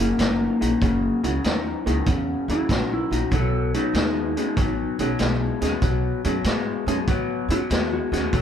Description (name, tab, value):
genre	electric blues shuffle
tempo	96 BPM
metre	4/4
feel	swing 68% on 8ths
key	unclear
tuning	A4 = 439 Hz
part	clean lap steel guitar	melody	0.0-8.4 s	A#3 to A4	-25 LUFS	left 1 dB	analog delay
part	reed electric piano	accompaniment	0.0-8.2 s	A3 to G#4	-28 LUFS	right 5 dB	none
part	electric guitar through a small old amp	riff	0.0-8.4 s	F#2 to G#3	-26 LUFS	left 5 dB	none
part	upright bass	bass	0.0-8.4 s	F#1 to A2	-27 LUFS	equal	none
part	vintage drum kit	drums	0.2-8.4 s	hi-hat, kick drum, snare drum	-26 LUFS	right 1 dB	none
room	light reverb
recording	band playing live in one room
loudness	-20 LUFS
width	side -8 dB against mid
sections	0.0-8.4 A section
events	electric slide guitar solo 0.0-8.4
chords	0.0 F#13; 3.3 B13